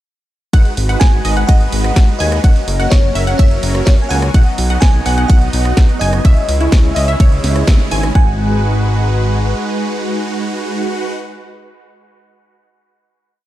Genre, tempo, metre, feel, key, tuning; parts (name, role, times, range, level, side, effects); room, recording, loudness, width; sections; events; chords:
EDM, festival progressive house; 126 BPM; 4/4; straight; G# minor; A4 = 440 Hz
lush unison pad; sustained chords; 0.5-11.1 s; C#3 to B4; -26 LUFS; left 1 dB; chorus, sidechain pumping
wide unison pluck; arpeggios; 0.5-11.1 s; E4 to G#5; -24 LUFS; equal; sidechain pumping, dub echo
supersaw chords; riff; 0.5-11.1 s; G#3 to G#5; -22 LUFS; right 1 dB; phaser, sidechain pumping
fat analog bass; bass; 0.5-9.5 s; F#1 to D#2; -16 LUFS; equal; sidechain pumping
electronic kick drum; drums; 0.5-8.3 s; -10 LUFS; equal
house drum kit; drums; 0.5-8.1 s; hi-hat, ride cymbal, rim click, snare drum; -23 LUFS; right 1 dB
bell-like FM electric piano; melody; 1.0-11.1 s; C#5 to G#5; -23 LUFS; right 1 dB; chorus, phaser, dub echo
light reverb; dark, warm production; -11 LUFS; side -14 dB against mid
0.5-8.2 drop; 8.2-12.0 final chord
drop 0.5-8.2; band accent 7.7
0.5 G#m7; 2.4 F#; 4.3 B; 6.2 C#m; 8.2 G#m7